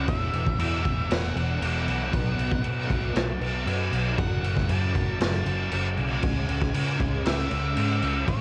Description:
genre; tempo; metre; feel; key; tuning
rock, shoegaze and dream pop; 117 BPM; 4/4; straight; unclear; A4 = 442 Hz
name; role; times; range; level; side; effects
octave-fuzz lead guitar; melody; 0.0-8.4 s; C#5 to A5; -37 LUFS; equal; distortion, analog delay
thick fuzz guitar; riff; 0.0-8.4 s; E2 to C#4; -34 LUFS; equal; distortion, ensemble chorus, cassette tape
vintage muted fingered electric bass; bass; 0.0-8.4 s; E1 to C#3; -31 LUFS; equal; none
raw garage drum kit; drums; 0.1-8.4 s; crash cymbal, kick drum, snare drum; -30 LUFS; equal; cassette tape
room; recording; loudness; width
little or no reverb; home recording on cassette; -26 LUFS; mono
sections
0.0-8.4 A section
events
none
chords
0.1 Esus2; 2.1 B5; 4.2 F#m; 6.2 C#m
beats
| 0.08 0.59 1.10 1.62 | 2.13 2.64 3.15 3.67 | 4.18 4.69 5.20 5.72 | 6.23 6.74 7.25 7.76 | 8.28

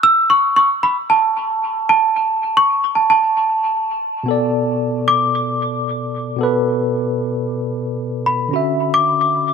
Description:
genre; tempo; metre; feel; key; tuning
amapiano; 113 BPM; 4/4; swing 55% on 16ths; unclear; A4 = 439 Hz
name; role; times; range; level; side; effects
worn celesta; melody; 0.0-9.5 s; A5 to E6; -15 LUFS; right 1 dB; dub echo
tine electric piano; accompaniment; 4.2-9.5 s; B2 to E5; -19 LUFS; left 1 dB; medium stereo tremolo
room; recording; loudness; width
light reverb, studio ambience; echo-heavy mix; -15 LUFS; side -6 dB against mid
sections
0.0-4.3 A section; 4.3-9.5 B section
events
drop 0.0-4.3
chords
0.0 N.C.; 4.3 Bm7; 8.5 Dmaj9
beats
| 0.02 0.55 1.08 1.61 | 2.14 2.67 3.21 3.74 | 4.27 4.80 5.33 5.86 | 6.39 6.92 7.45 7.98 | 8.52 9.05

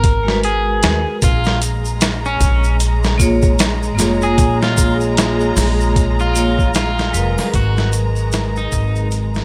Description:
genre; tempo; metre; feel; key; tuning
trip hop; 76 BPM; 4/4; swing 59% on 16ths; Bb phrygian; A4 = 441 Hz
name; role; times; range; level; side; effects
electric guitar at the edge of break-up; melody; 0.0-9.1 s; Db4 to Bb4; -25 LUFS; equal; vintage 12-bit sampler grit, tape echo
upright bass; bass; 0.0-9.4 s; F1 to Eb2; -21 LUFS; equal; tube saturation
boom bap sampler-style drum kit; drums; 0.0-9.4 s; hi-hat, kick drum, snare drum; -20 LUFS; equal; vintage 12-bit sampler grit
vibraphone with medium hard mallets; accompaniment; 0.2-9.4 s; Gb3 to Db5; -23 LUFS; equal; harmonic tremolo, tape echo
rich studio string section; sustained chords; 1.2-9.4 s; Ab3 to Bb5; -26 LUFS; equal; none
egg shaker and triangle; percussion; 1.2-9.4 s; none; -30 LUFS; equal; none
room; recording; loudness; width
light reverb, small room ambience; none; -16 LUFS; mono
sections
0.0-9.4 A section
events
fade-out 5.4-9.4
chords
0.0 Abm9; 1.2 Bbm7; 7.5 Abm9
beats
0.43 | 1.22 2.01 2.80 3.59 | 4.38 5.17 5.96 6.75 | 7.54 8.32 9.11

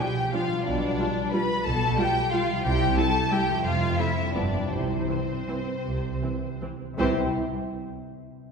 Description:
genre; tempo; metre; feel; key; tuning
classical, orchestral ballroom waltz; 148-194 BPM; 3/4; rubato; C major; A4 = 437 Hz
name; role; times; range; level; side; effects
rich symphonic violin section; melody; 0.0-7.2 s; C5 to B5; -30 LUFS; left 2 dB; none
warm symphonic violin section; second line; 0.0-7.2 s; C4 to B4; -31 LUFS; left 2 dB; none
warm symphonic viola section; accompaniment; 0.0-7.2 s; E3 to F4; -32 LUFS; right 2 dB; none
concert harp; arpeggios; 0.0-7.2 s; F2 to E5; -32 LUFS; left 3 dB; none
rich symphonic cello section; bass; 0.7-7.2 s; F2 to C3; -33 LUFS; right 3 dB; none
warm symphonic double bass section; bass; 0.7-7.2 s; F1 to C2; -30 LUFS; right 2 dB; none
timpani; percussion; 4.7-7.1 s; C3; -42 LUFS; right 1 dB; none
room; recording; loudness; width
wet concert hall reverb, RT60 2.0 s; heard from further back in the room; -23 LUFS; side -5 dB against mid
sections
0.0-7.0 A section; 7.0-8.1 B section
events
none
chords
0.0 Bdim; 0.7 G7/B; 2.6 C; 3.6 F; 4.3 G7; 4.7 C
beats
0.00 0.34 | 0.66 0.99 1.33 | 1.66 1.99 2.33 | 2.65 2.97 3.32 | 3.65 3.98 4.34 | 4.70 5.08 5.48 | 5.84 6.22 6.62 | 6.99

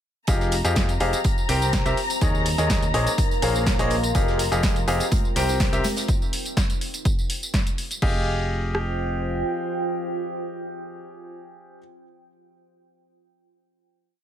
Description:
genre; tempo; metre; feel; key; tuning
piano house; 124 BPM; 4/4; straight; F minor; A4 = 440 Hz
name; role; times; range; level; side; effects
muted symphonic violin section; sustained chords; 0.3-6.1 s; Bb5; -31 LUFS; left 3 dB; sidechain pumping
bright baby grand piano; riff; 0.3-11.8 s; F3 to G5; -26 LUFS; left 1 dB; sidechain pumping, ping-pong delay
plucky analog bass; bass; 0.3-9.4 s; F1 to F2; -26 LUFS; equal; tube saturation, sidechain pumping
loose indie drum kit; drums; 0.3-6.1 s; hi-hat, snare drum; -38 LUFS; right 4 dB; none
punchy analog drum machine; drums; 0.3-8.9 s; kick drum, rim click; -23 LUFS; equal; none
punchy analog drum machine; drums; 0.3-8.1 s; crash cymbal, hi-hat, snare drum, tambourine; -29 LUFS; equal; none
deep dark ambient pad; texture; 1.2-11.9 s; Eb4 to G5; -31 LUFS; right 1 dB; chorus, built-in reverb, sidechain pumping
tambourine and congas; percussion; 4.1-6.1 s; none; -34 LUFS; right 1 dB; none
room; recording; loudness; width
studio reverb; none; -20 LUFS; side -10 dB against mid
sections
0.3-8.0 drop; 8.0-11.9 final chord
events
drop 0.3-8.0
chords
0.3 Fm9; 1.2 C7; 2.0 Eb7sus4; 2.9 Bbm11; 4.2 Fm9; 5.1 C7; 5.8 Eb5; 6.8 N.C.; 8.0 Fm9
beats
| 0.28 0.76 1.25 1.73 | 2.21 2.70 3.18 3.67 | 4.15 4.63 5.12 5.60 | 6.08 6.57 7.05 7.54 | 8.02 8.51 8.99 9.47 | 9.96 10.44 10.92 11.41

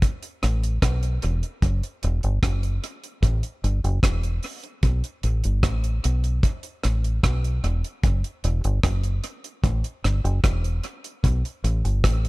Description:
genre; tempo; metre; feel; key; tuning
lovers rock reggae; 75 BPM; 4/4; straight; unclear; A4 = 441 Hz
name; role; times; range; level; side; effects
deep reggae drum kit; drums; 0.0-12.3 s; hi-hat, kick drum, rim click; -23 LUFS; equal; none
deep dub fingered electric bass; bass; 0.4-12.3 s; E1 to B1; -22 LUFS; equal; none
room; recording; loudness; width
little or no reverb; none; -21 LUFS; side -22 dB against mid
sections
0.0-12.3 A section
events
none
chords
none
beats
0.02 0.82 | 1.62 2.43 3.23 4.03 | 4.83 5.63 6.43 7.23 | 8.04 8.84 9.64 10.44 | 11.24 12.04

